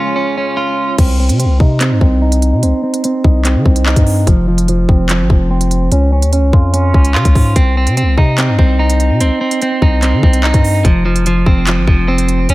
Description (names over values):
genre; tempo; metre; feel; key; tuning
hip hop, drill; 146 BPM; 4/4; half-time; C phrygian; A4 = 438 Hz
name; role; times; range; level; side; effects
warbly tape-like pad; sustained chords; 0.0-1.0 s; Db3 to Db5; -25 LUFS; equal; chorus, built-in reverb
clean electric guitar; arpeggios; 0.0-12.5 s; F3 to F4; -15 LUFS; right 2 dB; spring reverb, low-pass filter, tape echo
long sustained 808-style bass; bass; 1.0-12.5 s; F1 to Eb3; -13 LUFS; equal; none
drill drum kit; drums; 1.0-12.5 s; crash cymbal, handclaps, hi-hat, kick drum; -13 LUFS; equal; none
room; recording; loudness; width
little or no reverb; none; -10 LUFS; side -18 dB against mid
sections
1.0-12.5 A section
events
break 0.0-1.0; filter sweep on clean electric guitar 1.0-7.6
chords
0.0 Db; 1.0 Cm; 4.3 F5; 5.9 Db; 7.6 Cm; 10.8 F5